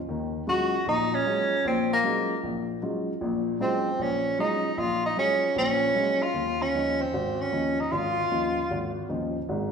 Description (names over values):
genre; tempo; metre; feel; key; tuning
jazz; 153 BPM; 4/4; swing 66% on 8ths; Eb dorian; A4 = 440 Hz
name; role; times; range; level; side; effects
dark upright piano; accompaniment; 0.1-9.7 s; Ab1 to F4; -28 LUFS; left 2 dB; none
warm tenor saxophone; melody; 0.5-9.1 s; Bb3 to Gb4; -25 LUFS; right 1 dB; none
room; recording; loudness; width
wet recital hall reverb, RT60 1.6 s; recorded in a church or concert hall; -24 LUFS; side -6 dB against mid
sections
0.0-9.7 A section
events
none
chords
0.1 Ebm11; 6.3 Dbadd9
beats
| 0.08 0.47 0.86 1.26 | 1.65 2.04 2.43 2.82 | 3.21 3.61 4.00 4.39 | 4.78 5.17 5.56 5.96 | 6.35 6.74 7.13 7.52 | 7.92 8.31 8.70 9.09 | 9.48